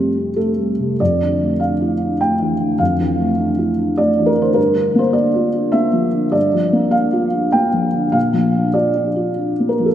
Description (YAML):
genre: neoclassical minimalist piano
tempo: 100 BPM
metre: 3/4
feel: rubato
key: unclear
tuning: A4 = 444 Hz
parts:
  - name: felt-muted upright piano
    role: solo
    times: 0.0-9.9 s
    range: F2 to G5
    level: -14 LUFS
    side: equal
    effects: none
room: wet concert hall reverb, RT60 2.5 s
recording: none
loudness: -14 LUFS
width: side -11 dB against mid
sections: 0.0-9.9 A section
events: none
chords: 0.0 Fadd9; 1.0 Dmadd9/F; 4.6 Gm7; 8.2 Bb